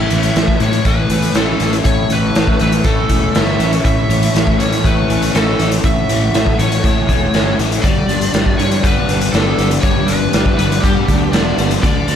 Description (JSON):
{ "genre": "rock, shoegaze and dream pop", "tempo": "120 BPM", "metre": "4/4", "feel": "straight", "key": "G lydian", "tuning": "A4 = 440 Hz", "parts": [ { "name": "lead guitar through a small cranked amp", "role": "melody", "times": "0.0-12.2 s", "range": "G4 to E5", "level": "-21 LUFS", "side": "right 1 dB", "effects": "overdrive, analog delay" }, { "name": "deep dark ambient pad", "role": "sustained chords", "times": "1.3-12.2 s", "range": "A4 to D6", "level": "-27 LUFS", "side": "left 1 dB", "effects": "chorus, built-in reverb" }, { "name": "electric guitar through a small old amp", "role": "arpeggios", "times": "0.0-12.2 s", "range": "E3 to D4", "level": "-26 LUFS", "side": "equal", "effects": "none" }, { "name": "overdriven semi-hollow guitar", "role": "riff", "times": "0.0-12.2 s", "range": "A2 to E4", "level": "-20 LUFS", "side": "left 8 dB", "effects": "lush chorus" }, { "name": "overdriven semi-hollow guitar", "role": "riff", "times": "0.0-12.2 s", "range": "G2 to E4", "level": "-23 LUFS", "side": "right 11 dB", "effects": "reverse reverb" }, { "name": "fuzz fingered electric bass", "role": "bass", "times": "0.0-12.2 s", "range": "E1 to A2", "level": "-19 LUFS", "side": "equal", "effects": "overdrive" }, { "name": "raw garage drum kit", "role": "drums", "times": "0.1-12.2 s", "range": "hi-hat, kick drum, snare drum", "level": "-16 LUFS", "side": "equal", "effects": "none" } ], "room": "studio ambience", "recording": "none", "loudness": "-12 LUFS", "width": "side -9 dB against mid", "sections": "0.0-12.2 A section", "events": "none", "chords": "0.0 A; 7.8 G" }